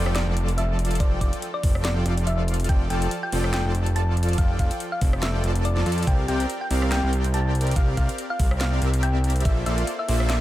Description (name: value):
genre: future bass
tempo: 142 BPM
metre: 4/4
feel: swing 55% on 16ths, half-time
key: F major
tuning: A4 = 440 Hz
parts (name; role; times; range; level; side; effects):
- soft supersaw; riff; 0.0-10.4 s; F3 to A5; -29 LUFS; equal; sidechain pumping
- fat analog bass; bass; 0.0-10.4 s; F1 to F2; -23 LUFS; equal; sidechain pumping
- downlifter; sound effects; 0.0-2.7 s; none; -40 LUFS; equal; none
- trap drum kit; drums; 0.1-10.4 s; hi-hat, rim click, snare drum; -33 LUFS; equal; none
- thumb-piano-like synth pluck; melody; 0.2-10.4 s; D5 to A5; -32 LUFS; left 1 dB; chorus, sidechain pumping, tape echo
- electronic kick drum; drums; 1.0-9.5 s; none; -22 LUFS; equal; none
room: little or no reverb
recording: none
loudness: -21 LUFS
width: side -15 dB against mid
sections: 0.0-10.4 A section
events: none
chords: 0.0 F69; 6.1 C9sus4; 9.5 Bbmaj9#11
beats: 0.15 0.58 | 1.00 1.42 1.85 2.27 | 2.69 3.11 3.54 3.96 | 4.38 4.80 5.23 5.65 | 6.07 6.49 6.92 7.34 | 7.76 8.18 8.61 9.03 | 9.45 9.87 10.30